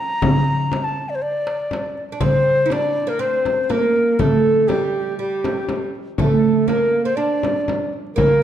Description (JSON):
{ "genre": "Arabic maqam ensemble", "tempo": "121 BPM", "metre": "4/4", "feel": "straight", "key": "D maqam bayati", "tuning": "A4 = 440 Hz", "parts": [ { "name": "breathy ney", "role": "melody", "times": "0.0-8.4 s", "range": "G4 to Bb5", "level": "-19 LUFS", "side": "left 1 dB", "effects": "none" }, { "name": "darbuka", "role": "percussion", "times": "0.1-8.3 s", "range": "none", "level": "-24 LUFS", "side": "right 1 dB", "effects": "none" }, { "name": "frame drum", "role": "percussion", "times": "0.2-8.3 s", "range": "none", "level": "-25 LUFS", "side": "left 3 dB", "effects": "none" }, { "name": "oud", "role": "second line", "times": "2.1-8.4 s", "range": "G3 to E4-50c", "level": "-22 LUFS", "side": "right 6 dB", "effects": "none" } ], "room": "wet recital hall reverb, RT60 1.4 s", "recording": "dark, warm production", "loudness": "-17 LUFS", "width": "side -10 dB against mid", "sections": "0.0-2.2 A section; 2.2-8.4 B section", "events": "none", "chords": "none", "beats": "| 0.23 0.72 1.22 1.72 | 2.21 2.71 3.21 3.70 | 4.20 4.70 5.19 5.69 | 6.19 6.68 7.18 7.68 | 8.17" }